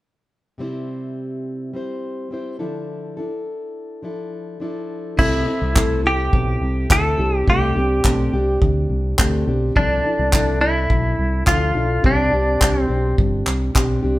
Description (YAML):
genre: acoustic pop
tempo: 105 BPM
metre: 4/4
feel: straight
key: C major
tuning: A4 = 440 Hz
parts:
  - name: fingerpicked plugged-in steel-string acoustic guitar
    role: accompaniment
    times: 0.6-14.2 s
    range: C3 to C5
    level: -24 LUFS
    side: equal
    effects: none
  - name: direct-recorded clean electric guitar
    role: melody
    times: 5.2-13.2 s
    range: D4 to A4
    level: -21 LUFS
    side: equal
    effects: vibrato effect
  - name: fingered electric bass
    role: bass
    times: 5.2-14.2 s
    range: G1 to D2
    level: -21 LUFS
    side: equal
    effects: none
  - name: unplugged drum kit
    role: drums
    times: 5.2-13.9 s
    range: crash cymbal, handclaps, kick drum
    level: -19 LUFS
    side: equal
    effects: none
room: moderate large studio reverb, RT60 0.9 s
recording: band playing live in one room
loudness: -17 LUFS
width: side -17 dB against mid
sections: 0.6-5.2 A section; 5.2-14.2 B section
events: none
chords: 0.6 C; 2.6 Dmadd9; 5.2 Am/C; 7.2 Gsus2; 9.8 Dmadd9/C; 12.0 Csus2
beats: | 0.60 1.17 1.74 2.32 | 2.89 3.47 4.04 4.61 | 5.18 5.76 6.33 6.90 | 7.47 8.04 8.62 9.19 | 9.76 10.33 10.90 11.47 | 12.04 12.61 13.18 13.75